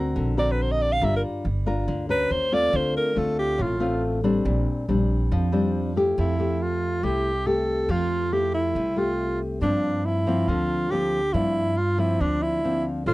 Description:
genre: bossa nova.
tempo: 140 BPM.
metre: 4/4.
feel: straight.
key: F major from 6.2 s.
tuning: A4 = 442 Hz.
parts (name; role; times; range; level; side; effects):
nylon-string guitar; accompaniment; 0.0-13.1 s; G2 to C5; -26 LUFS; left 2 dB; none.
upright bass; bass; 0.0-13.1 s; G1 to G2; -27 LUFS; right 1 dB; none.
breathy alto saxophone; melody; 0.4-13.1 s; D4 to F5; -24 LUFS; right 1 dB; none.
room: little or no reverb.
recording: dry, close 1970s-style studio recording.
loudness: -21 LUFS.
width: side -18 dB against mid.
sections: 0.0-6.2 A section; 6.2-13.1 B section.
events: alto saxophone solo 0.0-6.2.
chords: 0.0 Daug7; 1.0 Gm7; 2.3 Ebm7; 2.7 Dm7; 4.5 Bb69; 6.2 Fmaj9; 9.6 Gm7.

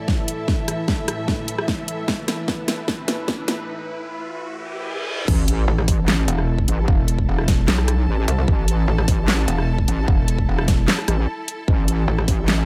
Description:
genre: heavy wobble dubstep.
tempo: 150 BPM.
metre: 4/4.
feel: half-time.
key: unclear.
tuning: A4 = 440 Hz.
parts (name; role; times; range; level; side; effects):
supersaw pad; sustained chords; 0.0-5.2 s; A2 to E5; -32 LUFS; equal; sidechain pumping, low-pass filter.
riser, reverse cymbal and sub drop; sound effects; 1.8-6.9 s; none; -35 LUFS; equal; none.
clear symphonic string section; texture; 0.0-12.7 s; E4 to A5; -35 LUFS; equal; sidechain pumping.
dubstep drum kit; drums; 0.1-12.6 s; crash cymbal, handclaps, hi-hat, rim click, snare drum; -25 LUFS; equal; none.
electronic kick drum; drums; 0.1-12.4 s; none; -23 LUFS; equal; none.
wobble bass; bass; 5.3-12.7 s; A1 to B1; -22 LUFS; equal; chorus, overdrive.
metallic wobble bass; bass; 5.7-12.3 s; E1 to C2; -22 LUFS; equal; chorus, overdrive.
room: digital ambience.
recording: high-pass filter.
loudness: -21 LUFS.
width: mono.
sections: 0.0-5.3 A section; 5.3-12.7 B section.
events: build-up 0.0-5.3; drum fill 0.0-3.7; filter sweep on supersaw synth 0.0-5.3; filter sweep 0.0-5.3; riser 1.8-5.3; break 3.7-5.3; reverse cymbal 4.5-5.3; drop 5.3-12.7; impact 5.3-6.9.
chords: 0.0 A5.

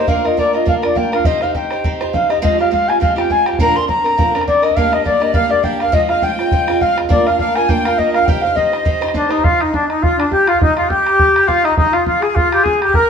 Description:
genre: celtic folk, Celtic reel.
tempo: 205 BPM.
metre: 4/4.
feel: swing 55% on 8ths.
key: C minor.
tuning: A4 = 440 Hz.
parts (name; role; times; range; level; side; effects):
bright reedy baroque flute; melody; 0.0-13.1 s; D4 to C6; -15 LUFS; left 2 dB; none.
accordion; second line; 0.0-0.1, 4.8-13.1 s; D4 to Ab5; -19 LUFS; left 1 dB; light tremolo tuning.
picked old ladder-braced acoustic guitar; accompaniment; 0.0-9.4 s; Bb2 to C5; -19 LUFS; right 3 dB; none.
bodhran; percussion; 0.1-13.1 s; none; -20 LUFS; right 1 dB; none.
room: wet stone room reverb, RT60 1.2 s.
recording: band playing live in one room.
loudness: -12 LUFS.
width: side -7 dB against mid.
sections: 0.1-9.4 A section; 9.4-13.1 A section.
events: none.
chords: 0.1 Bb; 1.3 Cm; 2.4 Fmadd9; 3.6 Bbadd9; 4.8 Gm; 5.9 Fm; 7.1 Bb; 8.3 Cm; 9.4 N.C..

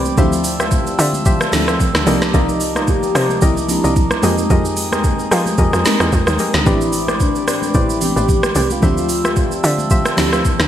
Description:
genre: amapiano.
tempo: 111 BPM.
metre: 4/4.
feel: swing 55% on 16ths.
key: unclear.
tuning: A4 = 440 Hz.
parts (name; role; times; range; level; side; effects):
warm velvety synth lead; melody; 0.0-10.3 s; C4 to G4; -22 LUFS; left 1 dB; chorus, digital delay.
crystalline FM electric piano; accompaniment; 0.0-10.7 s; E3 to E5; -22 LUFS; right 1 dB; chorus.
glass harmonica; sustained chords; 0.0-10.7 s; Ab3 to E6; -26 LUFS; right 2 dB; sidechain pumping.
percussive organ stab; stabs; 0.0-10.4 s; F4 to E5; -24 LUFS; left 2 dB; chorus, digital delay.
tight log drum bass; bass; 0.0-10.7 s; A1 to F3; -20 LUFS; equal; none.
smooth R&B drum kit; drums; 0.1-10.7 s; hi-hat, kick drum, rim click, shaker, snare drum; -17 LUFS; equal; gated reverb.
congas; percussion; 0.1-10.7 s; none; -27 LUFS; left 3 dB; none.
room: light reverb.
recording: bright 1980s-style digital production.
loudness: -13 LUFS.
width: side -11 dB against mid.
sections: 0.0-10.7 A section.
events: none.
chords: 0.2 Dm11; 2.1 Cm11; 4.2 Fm11; 6.7 Am11; 8.8 Dm11.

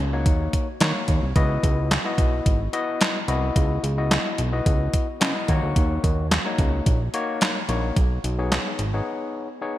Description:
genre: early-eighties boogie funk.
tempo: 109 BPM.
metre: 4/4.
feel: straight.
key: C# dorian.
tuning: A4 = 440 Hz.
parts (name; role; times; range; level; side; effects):
fat analog bass; bass; 0.0-9.0 s; G#1 to D#3; -24 LUFS; right 1 dB; none.
overdriven tine electric piano; accompaniment; 0.1-9.8 s; A#3 to D#5; -27 LUFS; left 3 dB; none.
crisp 8-bit digital drum machine; drums; 0.3-8.9 s; handclaps, hi-hat, kick drum, snare drum; -22 LUFS; equal; gated reverb.
room: light reverb.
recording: bright 1980s-style digital production.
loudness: -20 LUFS.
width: side -14 dB against mid.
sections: 0.0-9.8 A section.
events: break 9.1-9.8.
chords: 0.0 D#m7; 1.4 C#m11; 5.5 D#m7; 8.0 B69.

